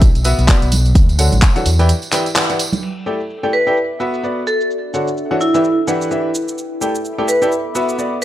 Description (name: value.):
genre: piano house.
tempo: 128 BPM.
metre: 4/4.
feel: swing 58% on 16ths.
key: E minor.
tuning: A4 = 439 Hz.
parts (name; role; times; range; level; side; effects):
overdriven fingered electric bass; bass; 0.0-1.9 s; A1 to E2; -14 LUFS; equal; sidechain pumping.
electronic kick drum; drums; 0.0-1.5 s; none; -11 LUFS; equal; none.
house drum kit; drums; 0.0-8.2 s; crash cymbal, handclaps, hi-hat, shaker; -21 LUFS; equal; low-pass filter on hats, low-pass filter on snare, low-pass filter on cymbals, low-pass filter on perc, low-pass filter on room.
tambourine and congas; percussion; 0.0-2.8 s; none; -23 LUFS; right 3 dB; none.
bright grand piano; riff; 0.2-8.2 s; D3 to G5; -20 LUFS; left 1 dB; sidechain pumping, tape echo.
warbly tape-like pad; texture; 3.3-8.2 s; B3 to D6; -25 LUFS; equal; chorus, built-in reverb, sidechain pumping.
vibraphone with hard mallets; melody; 3.5-8.2 s; E4 to B4; -18 LUFS; equal; tape echo.
room: light reverb, digital ambience.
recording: dry, gritty hardware recording.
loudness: -14 LUFS.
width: side -13 dB against mid.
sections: 0.0-2.8 A section; 2.8-8.2 B section.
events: break 1.9-2.8; band accent 2.4.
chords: 0.0 Bm; 1.0 Dmaj7; 1.7 Em7; 2.8 A7sus4; 3.8 Bm; 4.7 Dmaj7; 5.4 Em7; 6.6 A7sus4; 7.5 Bm.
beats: 0.02 0.48 | 0.95 1.42 1.89 2.36 | 2.83 3.30 3.77 4.24 | 4.70 5.17 5.64 6.11 | 6.58 7.05 7.52 7.99.